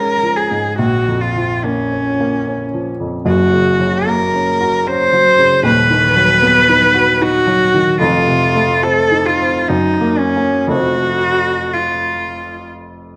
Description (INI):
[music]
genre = classical, romantic duo for cello and grand piano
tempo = 55-77 BPM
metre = 3/4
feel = rubato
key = unclear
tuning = A4 = 440 Hz
[part]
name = dark cello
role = melody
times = 0.0-12.7 s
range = Db4 to C5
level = -16 LUFS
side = equal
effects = none
[part]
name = warm baby grand piano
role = accompaniment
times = 0.0-13.2 s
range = D#1 to Gb4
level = -19 LUFS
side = equal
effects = none
[sound]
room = moderate recital hall reverb, RT60 1.4 s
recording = none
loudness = -14 LUFS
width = mono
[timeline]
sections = 0.0-13.2 A section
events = none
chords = 0.0 Db; 0.8 Bbm; 3.3 Gb; 5.7 B/D#; 8.0 F7; 9.7 Gb; 10.7 F